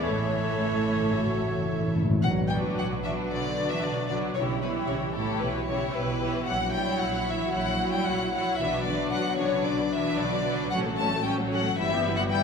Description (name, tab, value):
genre	quick classical-period movement for symphony orchestra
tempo	113 BPM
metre	4/4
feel	straight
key	B minor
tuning	A4 = 441 Hz
part	rich chamber violin section	melody	0.0-12.4 s	A4 to A5	-30 LUFS	left 4 dB	none
part	dark clarinet	second line	0.0-1.9 s	A4	-38 LUFS	right 1 dB	none
part	mellow hollow large flute ensemble	second line	0.0-1.9 s	A4	-39 LUFS	right 2 dB	none
part	warm chamber violin section	second line	0.0-12.4 s	E4 to E5	-34 LUFS	left 4 dB	none
part	warm oboe	second line	0.0-2.0 s	C#5	-36 LUFS	right 2 dB	none
part	rich chamber viola section	accompaniment	0.0-12.4 s	E3 to G4	-33 LUFS	right 2 dB	none
part	rich chamber cello section	bass	0.0-12.4 s	A2 to A3	-33 LUFS	right 3 dB	none
part	rich chamber double bass section	bass	0.0-12.4 s	G1 to B1	-34 LUFS	right 3 dB	none
part	timpani	percussion	0.0-3.0, 8.6-9.3 s	A2 to B2	-30 LUFS	left 1 dB	none
part	mellow French horn section	sustained chords	0.1-12.4 s	F#3 to C#5	-34 LUFS	left 2 dB	none
room	wet concert hall reverb, RT60 2.4 s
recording	minimal, uncompressed stereo recording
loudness	-24 LUFS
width	side -6 dB against mid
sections	0.0-2.2 A section; 2.2-12.4 B section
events	timpani fill 0.0-2.2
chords	0.0 A; 2.2 Bm; 4.4 C#m7b5/B; 6.5 F#7/A#; 8.6 Bm; 10.7 F#m/A; 11.8 Em/G